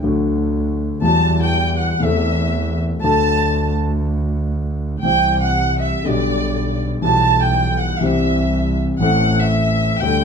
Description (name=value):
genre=tango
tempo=120 BPM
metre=4/4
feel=rubato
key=unclear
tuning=A4 = 441 Hz
part: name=warm concert grand piano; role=accompaniment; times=0.0-10.2 s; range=A1 to A4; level=-19 LUFS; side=left 3 dB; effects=none
part: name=rich double bass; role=bass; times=0.0-10.2 s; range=A1 to E2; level=-21 LUFS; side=right 2 dB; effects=none
part: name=dark chamber violin section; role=second line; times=1.0-10.2 s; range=D5 to A5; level=-19 LUFS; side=right 2 dB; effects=none
room=moderate large studio reverb, RT60 0.9 s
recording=none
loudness=-15 LUFS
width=side -6 dB against mid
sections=0.0-10.2 A section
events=violin section solo 0.0-10.2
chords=0.0 D; 1.0 Emadd9; 2.0 Am/E; 3.0 D; 5.0 C; 6.0 G/B; 7.0 Em/B; 8.0 C; 9.0 Am